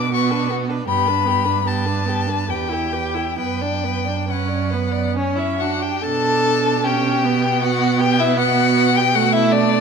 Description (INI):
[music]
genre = classical, slow romantic movement for string quartet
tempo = 64-80 BPM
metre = 3/4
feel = rubato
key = B minor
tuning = A4 = 440 Hz
[part]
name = rich violin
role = melody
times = 0.0-9.8 s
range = C#5 to D6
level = -21 LUFS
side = left 9 dB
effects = none
[part]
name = warm violin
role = second line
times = 0.0-9.8 s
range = C#4 to D5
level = -24 LUFS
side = left 1 dB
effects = none
[part]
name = clear viola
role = accompaniment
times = 0.0-9.8 s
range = A3 to G4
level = -22 LUFS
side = right 6 dB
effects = none
[part]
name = rich cello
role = bass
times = 0.0-9.8 s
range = E2 to B2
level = -23 LUFS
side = right 5 dB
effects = none
[sound]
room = moderate scoring stage reverb, RT60 1.5 s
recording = none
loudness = -16 LUFS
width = side -6 dB against mid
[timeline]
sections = 0.0-6.0 A section; 6.0-9.8 B section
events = none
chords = 0.0 Bm; 0.9 G; 2.5 Em; 3.4 Bm/F#; 5.2 F#5; 6.0 Bm; 8.4 Bm11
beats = 0.13 | 0.88 1.66 2.48 | 3.38 4.29 5.16 | 6.03 6.84 7.62 | 8.39 9.15